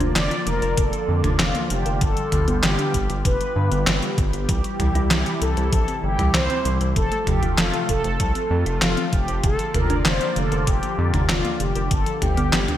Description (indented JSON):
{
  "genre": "synthwave",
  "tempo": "97 BPM",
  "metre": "4/4",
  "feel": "straight",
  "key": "unclear",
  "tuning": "A4 = 440 Hz",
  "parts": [
    { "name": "phased analog pad", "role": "sustained chords", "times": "0.0-12.8 s", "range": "C3 to D5", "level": "-28 LUFS", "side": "left 1 dB", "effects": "phaser, chorus, sidechain pumping" },
    { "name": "thumb-piano-like synth pluck", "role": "arpeggios", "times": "0.0-12.8 s", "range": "D3 to C5", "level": "-30 LUFS", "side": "right 2 dB", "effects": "chorus, digital delay" },
    { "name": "round analog bass", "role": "bass", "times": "0.0-12.7 s", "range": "F1 to G2", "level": "-24 LUFS", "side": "equal", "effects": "tube saturation" },
    { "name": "detuned 8-bit digital drum machine", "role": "drums", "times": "0.0-12.8 s", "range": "handclaps, hi-hat, snare drum, toms", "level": "-23 LUFS", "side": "equal", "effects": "gated reverb" },
    { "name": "mellow synth brass", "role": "melody", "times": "0.2-12.8 s", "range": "F4 to D5", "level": "-26 LUFS", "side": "left 1 dB", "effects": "chorus, digital delay" },
    { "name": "electronic kick drum", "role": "drums", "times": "0.8-12.0 s", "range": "none", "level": "-24 LUFS", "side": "equal", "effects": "none" }
  ],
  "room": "moderate lush hall reverb, RT60 2.2 s",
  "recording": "bright 1980s-style digital production",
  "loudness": "-19 LUFS",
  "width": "side -12 dB against mid",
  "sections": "0.0-12.8 A section",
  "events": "none",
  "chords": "0.0 Bb/F; 2.0 G7; 4.5 C; 7.0 F; 9.4 Bb/F; 11.9 G7",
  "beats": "0.16 0.78 1.40 | 2.01 2.63 3.25 3.87 | 4.49 5.11 5.72 6.34 | 6.96 7.58 8.20 8.82 | 9.44 10.05 10.67 11.29 | 11.91 12.53"
}